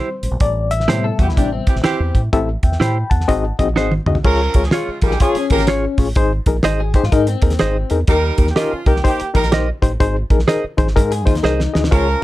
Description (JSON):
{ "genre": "uptempo 1960s-style soul", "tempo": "125 BPM", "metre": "4/4", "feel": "swing 63% on 8ths", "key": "unclear", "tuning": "A4 = 439 Hz", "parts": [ { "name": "bright reed electric piano", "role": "accompaniment", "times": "0.0-12.1 s", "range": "C3 to B5", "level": "-20 LUFS", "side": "left 4 dB", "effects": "fast tremolo" }, { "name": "direct-recorded clean electric guitar", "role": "stabs", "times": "0.0-11.6 s", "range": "D#4 to Eb5", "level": "-19 LUFS", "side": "right 5 dB", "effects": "tube saturation" }, { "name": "deep dub fingered electric bass", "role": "bass", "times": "0.2-12.1 s", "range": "G#1 to A2", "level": "-20 LUFS", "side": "equal", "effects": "none" }, { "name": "cloth-damped thuddy drum kit", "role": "drums", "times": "0.2-12.1 s", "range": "crash cymbal, hi-hat, kick drum, snare drum, toms", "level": "-17 LUFS", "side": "equal", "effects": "none" }, { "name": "electric guitar through a small old amp", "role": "riff", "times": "1.0-2.2, 5.1-8.0, 11.1-11.9 s", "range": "C4 to A4", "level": "-24 LUFS", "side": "left 8 dB", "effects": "lush chorus" }, { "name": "warm horn section", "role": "second line", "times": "1.2-12.2 s", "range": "Db3 to Bb4", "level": "-21 LUFS", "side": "right 3 dB", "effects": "none" } ], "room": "little or no reverb", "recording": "dark, warm production", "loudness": "-14 LUFS", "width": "side -16 dB against mid", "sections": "0.0-2.3 A section; 2.3-4.2 B section; 4.2-12.2 C section", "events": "reed electric piano solo 0.0-2.3; band accent 0.4-2.3; drum fill 3.8-4.2, 11.4-11.9", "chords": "0.0 Am7; 3.3 G#7; 4.2 Db; 6.2 Ab; 8.1 Eb; 10.0 Ab" }